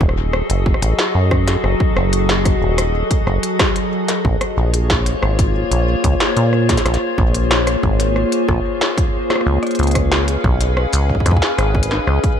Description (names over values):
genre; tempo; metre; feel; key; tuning
IDM; 92 BPM; 4/4; straight; unclear; A4 = 440 Hz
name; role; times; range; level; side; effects
glassy FM pad; sustained chords; 0.0-12.4 s; F#3 to E#5; -20 LUFS; left 2 dB; ensemble chorus, built-in reverb
deep acid bass; bass; 0.0-12.2 s; D#1 to A#2; -17 LUFS; equal; none
electronic kick drum; drums; 0.0-12.4 s; none; -19 LUFS; equal; none
industrial drum kit; drums; 0.1-12.4 s; hi-hat, rim click, shaker, snare drum; -21 LUFS; equal; ping-pong delay
room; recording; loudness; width
light reverb; none; -14 LUFS; side -8 dB against mid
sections
0.0-12.4 A section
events
none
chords
0.0 F#m6; 4.2 A#m7; 9.5 C#7